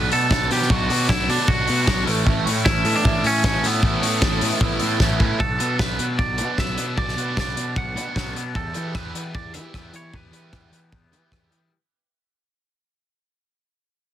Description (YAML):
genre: indie rock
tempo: 153 BPM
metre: 4/4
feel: straight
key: B minor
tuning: A4 = 441 Hz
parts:
  - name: twangy electric guitar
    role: melody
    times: 0.0-11.5 s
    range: B3 to F#5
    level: -25 LUFS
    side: right 2 dB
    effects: tape echo
  - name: biting overdriven guitar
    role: riff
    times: 0.0-11.6 s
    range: B2 to D5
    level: -28 LUFS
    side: right 10 dB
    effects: analog chorus
  - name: raw garage guitar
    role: riff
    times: 0.0-11.7 s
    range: E2 to G4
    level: -28 LUFS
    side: left 6 dB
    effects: overdrive, phaser
  - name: fuzz picked electric bass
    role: bass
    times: 0.0-11.7 s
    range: A1 to E3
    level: -26 LUFS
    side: equal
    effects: overdrive
  - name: loose indie drum kit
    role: drums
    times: 0.1-11.6 s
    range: hi-hat, kick drum, rim click, snare drum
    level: -22 LUFS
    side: equal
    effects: soft clipping on kick, soft clipping on snare
room: little or no reverb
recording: dense, heavily limited modern master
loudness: -18 LUFS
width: side -11 dB against mid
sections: 0.0-5.4 A section; 5.4-11.7 B section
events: drum fill 5.0-5.4; fade-out 5.4-11.7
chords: 0.0 Bm; 2.1 Aadd9; 5.4 Bm; 8.6 Em